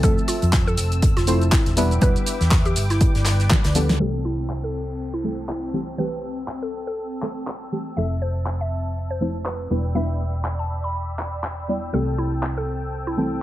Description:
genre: deep house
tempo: 121 BPM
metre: 4/4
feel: swing 58% on 16ths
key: C major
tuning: A4 = 439 Hz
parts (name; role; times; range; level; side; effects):
- mallet-like synth pluck; melody; 0.0-13.4 s; E4 to B5; -30 LUFS; right 1 dB; chorus, digital delay
- warm analog pad; sustained chords; 0.0-13.4 s; C4 to E6; -33 LUFS; left 1 dB; chorus, sidechain pumping
- deep mellow chord stab; stabs; 0.0-13.4 s; E3 to E5; -25 LUFS; equal; chorus, vintage 12-bit sampler grit, sidechain pumping, digital delay
- hollow-body short-scale fingered electric bass; bass; 0.0-13.4 s; E1 to F2; -24 LUFS; equal; sidechain pumping
- deep house drum kit; drums; 0.0-12.5 s; handclaps, hi-hat, shaker, snare drum; -26 LUFS; equal; none
- electronic kick drum; drums; 0.0-3.6 s; none; -19 LUFS; equal; none
- modern studio drum kit; drums; 0.0-4.0 s; hi-hat, snare drum; -35 LUFS; left 2 dB; none
- downlifter; sound effects; 4.2-8.0 s; none; -53 LUFS; equal; none
room: light reverb, digital ambience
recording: vinyl crackle, low-pass filter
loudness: -20 LUFS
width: side -14 dB against mid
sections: 0.0-4.0 A section; 4.0-13.4 B section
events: drum fill 3.5-4.0; band accent 3.9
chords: 0.0 Fmaj7; 1.8 Em7; 3.0 G7; 4.0 C6; 8.0 Fmaj7; 9.7 Em7; 11.9 C6

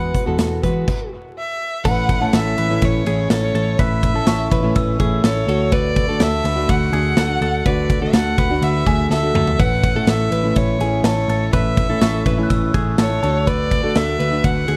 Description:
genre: jangly indie pop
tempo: 124 BPM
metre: 4/4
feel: straight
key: A major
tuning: A4 = 442 Hz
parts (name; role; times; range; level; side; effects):
- clear violin; melody; 0.0-14.8 s; C#5 to F#5; -26 LUFS; equal; dub echo
- fingerpicked plugged-in steel-string acoustic guitar; accompaniment; 0.0-14.8 s; E2 to F#4; -25 LUFS; equal; dub echo
- direct-recorded clean electric guitar; arpeggios; 0.0-14.8 s; G#4 to B4; -28 LUFS; equal; phaser, dub echo
- vintage muted picked electric bass; bass; 0.0-14.8 s; A1 to E3; -24 LUFS; equal; tube saturation
- big rock drum kit; drums; 0.1-14.8 s; crash cymbal, hi-hat, kick drum, ride cymbal, snare drum, toms; -23 LUFS; equal; dub echo
- glockenspiel with rubber mallets; second line; 4.3-5.1, 12.0-12.8 s; C#6 to F#6; -34 LUFS; equal; dub echo
room: little or no reverb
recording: echo-heavy mix, vinyl crackle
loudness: -18 LUFS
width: mono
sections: 0.0-1.9 A section; 1.9-14.8 B section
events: stop 0.9-1.9; drum fill 9.1-9.6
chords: 0.0 Eadd9; 1.9 A; 5.5 D; 9.6 A; 13.2 D

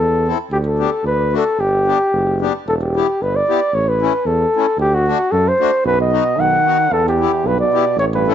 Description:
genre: alpine folk, alpine dance band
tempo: 113 BPM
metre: 2/4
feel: swing 55% on 8ths, rubato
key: E minor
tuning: A4 = 440 Hz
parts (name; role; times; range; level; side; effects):
- mellow flugelhorn; melody; 0.0-8.3 s; F#4 to F#5; -16 LUFS; left 1 dB; none
- warm tuba; bass; 0.0-8.3 s; E1 to F#2; -20 LUFS; right 2 dB; none
- accordion; accompaniment; 0.3-8.3 s; A3 to A4; -22 LUFS; left 9 dB; none
- clear euphonium; second line; 5.8-8.3 s; E2 to D#3; -21 LUFS; right 13 dB; none
room: moderate echo chamber reverb, RT60 1.4 s, small room ambience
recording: 1960s-style stereo with parts hard left and right, nothing above 7.7 kHz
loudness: -14 LUFS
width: side -9 dB against mid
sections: 0.0-2.7 A section; 2.7-8.3 B section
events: none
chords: 0.0 Am; 0.5 G/D; 1.0 D; 1.6 G; 2.7 Em; 3.7 A; 4.8 D; 5.8 B; 6.9 Em

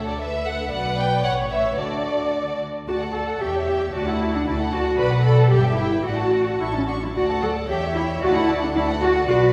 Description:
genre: quick classical-period movement for string orchestra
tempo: 113 BPM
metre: 2/4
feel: rubato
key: D major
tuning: A4 = 440 Hz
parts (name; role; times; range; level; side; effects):
- muted symphonic violin section; melody; 0.0-9.4 s; D5 to C#6; -31 LUFS; equal; none
- muted symphonic violin section; second line; 0.0-9.5 s; F#4 to G5; -31 LUFS; equal; none
- muted symphonic viola section; accompaniment; 0.0-9.4 s; C#4 to D5; -29 LUFS; equal; none
- muted chamber cello section; bass; 0.0-9.5 s; D2 to B4; -27 LUFS; equal; none
- muted studio double bass section; bass; 0.0-9.5 s; G1 to E2; -27 LUFS; equal; none
room: wet scoring stage reverb, RT60 1.6 s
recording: heard from further back in the room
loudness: -22 LUFS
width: mono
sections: 0.0-2.9 A section; 2.9-9.5 B section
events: none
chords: 0.0 D5; 0.7 Bm; 1.2 A; 1.8 D; 3.4 C#dim/E; 3.9 D; 5.0 Bm; 5.5 Em/G; 6.0 D/A; 6.6 A; 7.2 D; 7.7 C#dim/E; 8.2 D

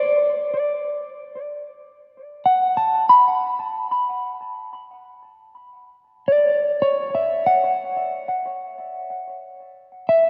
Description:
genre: ambient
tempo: free time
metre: none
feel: none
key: B minor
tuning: A4 = 439 Hz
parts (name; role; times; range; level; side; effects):
- mellow electric guitar; solo; 0.0-10.3 s; C#5 to B5; -21 LUFS; equal; phaser, analog delay
room: wet lush hall reverb, RT60 2.8 s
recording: dreamy mix soaked in reverb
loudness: -21 LUFS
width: mono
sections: 0.0-10.3 A section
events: none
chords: 0.0 Bm

